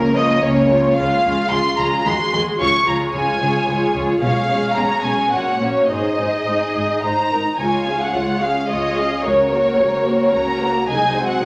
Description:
quick classical-period movement for string orchestra; 110 BPM; 3/4; straight; Db major; A4 = 440 Hz
warm symphonic violin section; melody; 0.0-11.4 s; Bb4 to Db6; -20 LUFS; equal
warm symphonic violin section; second line; 0.0-11.4 s; Db4 to F5; -26 LUFS; equal
rich symphonic viola section; accompaniment; 0.0-11.4 s; F3 to Bb4; -25 LUFS; equal
clear symphonic double bass section; bass; 0.0-11.4 s; Ab1 to Eb2; -34 LUFS; equal
dark chamber cello section; bass; 0.0-11.4 s; C2 to Eb3; -29 LUFS; equal
wet recital hall reverb, RT60 1.2 s; -18 LUFS; mono
0.0-7.6 A section; 7.6-11.4 B section
0.0 Bbm/Db; 1.0 Db; 2.0 Ab7/Eb; 2.6 Db; 4.2 Db7/Cb; 5.3 Gb/Bb; 5.9 Ab; 7.6 Db; 9.2 Gb/Db; 10.9 Ab7/C

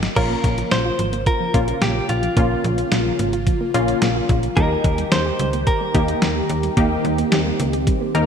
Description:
synth-pop; 109 BPM; 4/4; straight; A4 = 440 Hz
slap-like FM bass; bass; 0.0-8.3 s; Ab1 to Eb2; -23 LUFS; equal
detuned 8-bit digital drum machine; drums; 0.0-8.3 s; crash cymbal, hi-hat, kick drum, snare drum; -22 LUFS; equal; gated reverb
direct-recorded clean electric guitar; melody; 0.2-8.3 s; F4 to C5; -25 LUFS; equal; tremolo, ping-pong delay
funky polysynth comp; accompaniment; 0.2-8.3 s; Bb3 to Bb4; -24 LUFS; left 2 dB; chorus
phased analog pad; sustained chords; 0.2-8.3 s; Db3 to G4; -27 LUFS; equal; phaser, chorus
soft round pluck; arpeggios; 0.2-8.2 s; F3 to G4; -28 LUFS; right 4 dB; chorus, ping-pong delay
moderate lush hall reverb, RT60 2.5 s; bright 1980s-style digital production; -17 LUFS; side -7 dB against mid
0.2-8.3 A section
drum fill 0.0
0.2 Bbm; 4.6 Eb

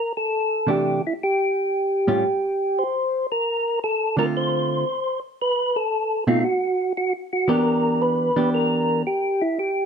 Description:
jazz; 114 BPM; 4/4; swing 68% on 8ths; A4 = 438 Hz
percussive tonewheel organ; melody; 0.0-9.9 s; E4 to C5; -21 LUFS; equal; slow rotary speaker, plate reverb
hollow-body jazz guitar; accompaniment; 0.7-9.0 s; A2 to G4; -22 LUFS; right 2 dB
moderate studio reverb, RT60 0.6 s; -20 LUFS; side -6 dB against mid
0.0-9.9 A section
0.0 C69; 1.2 Aaug7; 2.2 N.C.; 3.3 Dm7; 5.4 B7b9; 7.5 Em7

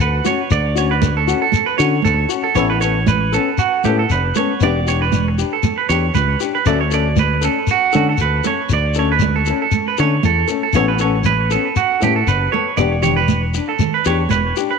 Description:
highlife guitar band; 117 BPM; 4/4; straight; D major; A4 = 441 Hz
clean electric guitar; arpeggios; 0.0-14.8 s; F#4 to D5; -18 LUFS; right 10 dB; tape echo
fingered electric bass; bass; 0.0-14.5 s; E1 to D3; -18 LUFS; left 1 dB
nylon-string guitar; accompaniment; 0.2-14.7 s; E3 to A4; -22 LUFS; left 13 dB
congas; percussion; 0.3-14.4 s; -24 LUFS; right 11 dB
shekere; percussion; 0.3-14.7 s; -21 LUFS; left 6 dB
moderate echo chamber reverb, RT60 2.3 s; 1960s-style stereo with parts hard left and right; -14 LUFS; side -5 dB against mid
0.0-14.8 A section
0.0 Dmaj7; 2.6 Aadd9; 4.6 Em7; 6.7 Dmaj7; 10.7 Aadd9; 12.8 Em7

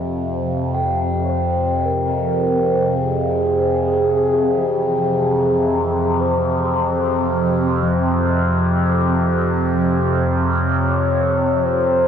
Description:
dark ambient drone; 55 BPM; 4/4; straight; F harmonic minor; A4 = 439 Hz
gamelan-type bossed gongs; arpeggios; 0.0-12.1 s; E3 to C4; -29 LUFS; left 3 dB
overtone-sweeping drone; drone; 0.0-12.1 s; F2 to C3; -18 LUFS; equal; chorus, built-in reverb, phaser
bronze singing bowl; texture; 0.7-12.1 s; G5; -28 LUFS; left 2 dB
mellow horn-like synth lead; melody; 1.2-12.1 s; Ab4 to Db5; -21 LUFS; left 1 dB; chorus, diffuse ambient delay
wet cathedral reverb, RT60 6.6 s; worn, warbling old tape, cassette tape, warbly pitch drift; -16 LUFS; side -8 dB against mid
0.7-12.1 A section
0.0 F5; 0.7 Fm

